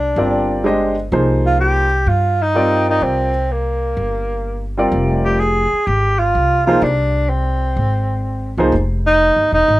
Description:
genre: modal jazz.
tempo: 126 BPM.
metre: 4/4.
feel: swing 69% on 8ths.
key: C minor.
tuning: A4 = 440 Hz.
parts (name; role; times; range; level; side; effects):
breathy tenor saxophone; melody; 0.0-9.8 s; Bb3 to Ab4; -16 LUFS; right 1 dB; none.
upright bass; bass; 0.0-9.8 s; E1 to G2; -19 LUFS; equal; none.
warm concert grand piano; accompaniment; 0.2-8.7 s; F3 to Eb5; -17 LUFS; equal; none.
room: studio ambience.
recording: rough home demo mix.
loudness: -14 LUFS.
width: side -17 dB against mid.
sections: 0.0-9.8 A section.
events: none.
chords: 0.0 Cm9; 4.9 Fmadd9.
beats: 0.17 0.65 | 1.12 1.60 2.07 2.55 | 3.02 3.50 3.97 4.45 | 4.92 5.40 5.88 6.35 | 6.83 7.30 7.78 8.25 | 8.73 9.21 9.68.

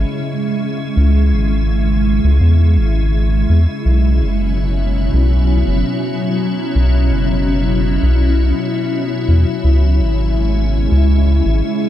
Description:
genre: ambient dub.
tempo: 83 BPM.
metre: 4/4.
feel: straight.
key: C# minor.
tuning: A4 = 442 Hz.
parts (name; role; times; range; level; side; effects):
soft additive organ-like pad; sustained chords; 0.0-11.9 s; B2 to E4; -18 LUFS; equal; ensemble chorus, built-in reverb.
round analog bass; bass; 0.0-11.6 s; F#1 to E2; -13 LUFS; equal; none.
room: little or no reverb.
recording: lossy compression artefacts.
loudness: -13 LUFS.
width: side -12 dB against mid.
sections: 0.0-11.9 A section.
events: none.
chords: 0.0 C#m; 3.9 Bsus4; 9.6 C#m.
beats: 0.24 | 0.97 1.69 2.41 3.14 | 3.86 4.58 5.30 6.03 | 6.75 7.47 8.20 8.92 | 9.64 10.37 11.09 11.81.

